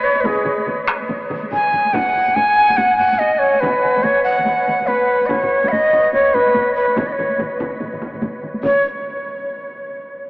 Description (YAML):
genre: japanese traditional, taiko drum ensemble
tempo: 143 BPM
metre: 4/4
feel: swing 60% on 16ths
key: C# suspended pentatonic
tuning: A4 = 440 Hz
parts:
  - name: breathy reedy shakuhachi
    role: melody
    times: 0.0-8.8 s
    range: G#4 to G#5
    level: -15 LUFS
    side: equal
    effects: none
  - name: taiko ensemble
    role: percussion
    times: 0.2-8.8 s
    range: none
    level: -29 LUFS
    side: equal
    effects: none
  - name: taiko ensemble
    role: percussion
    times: 0.3-8.8 s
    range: none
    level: -31 LUFS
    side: equal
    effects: none
  - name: taiko ensemble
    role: percussion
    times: 0.5-9.0 s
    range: none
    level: -30 LUFS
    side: left 1 dB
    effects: none
  - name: taiko ensemble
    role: percussion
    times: 0.5-9.0 s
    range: none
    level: -32 LUFS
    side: right 1 dB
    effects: none
room: wet huge ambient reverb, RT60 7.5 s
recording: in a vast, echoing space, AM radio sound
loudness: -14 LUFS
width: side -26 dB against mid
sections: 0.0-8.6 A section; 8.6-10.3 B section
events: none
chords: none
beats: | 0.24 0.67 1.09 1.51 | 1.94 2.36 2.78 3.20 | 3.62 4.04 4.46 4.88 | 5.30 5.72 6.14 6.55 | 6.97 7.39 7.80 8.22 | 8.63